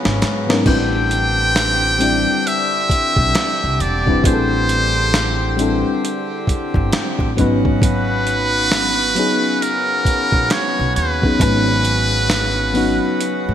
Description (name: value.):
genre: R&B, neo-soul.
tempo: 67 BPM.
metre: 4/4.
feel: swing 62% on 16ths.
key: A minor.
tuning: A4 = 440 Hz.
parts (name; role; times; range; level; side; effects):
mellow FM electric piano; accompaniment; 0.0-13.5 s; F#3 to D5; -20 LUFS; left 2 dB; chorus.
accordion; sustained chords; 0.0-13.5 s; C#3 to G4; -25 LUFS; right 1 dB; none.
upright bass; bass; 0.1-13.5 s; E1 to G#2; -21 LUFS; equal; none.
boom bap sampler-style drum kit; drums; 0.1-13.5 s; crash cymbal, hi-hat, kick drum, snare drum; -20 LUFS; right 1 dB; gated reverb.
trumpet with metal mute; melody; 0.7-13.5 s; A#4 to G5; -18 LUFS; equal; none.
room: moderate plate reverb, RT60 2.4 s.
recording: bright 1980s-style digital production.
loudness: -14 LUFS.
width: side -10 dB against mid.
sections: 0.0-13.5 A section.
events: drum fill 0.0-0.7.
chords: 0.0 G#m11; 0.7 Am11; 7.4 G#m11.